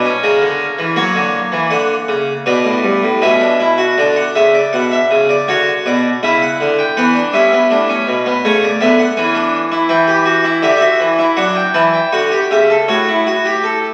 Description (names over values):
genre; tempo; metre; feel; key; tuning
classical, baroque-style 3-part fugue for harpsichord; 81 BPM; 4/4; straight; B minor, D major from 9.9 s; A4 = 440 Hz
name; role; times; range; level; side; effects
harpsichord; solo; 0.0-13.9 s; G2 to A5; -14 LUFS; equal; none
room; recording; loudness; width
wet concert hall reverb, RT60 1.8 s; very old 78 rpm record, tube saturation, vinyl crackle; -14 LUFS; mono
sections
0.0-4.0 A section; 4.0-13.9 B section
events
none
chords
0.0 F# (rootless); 1.0 F#7; 2.5 Bm; 4.0 D; 5.5 Bm; 7.0 Em; 8.4 Bm11/C#; 9.9 Em9; 11.4 D; 12.9 A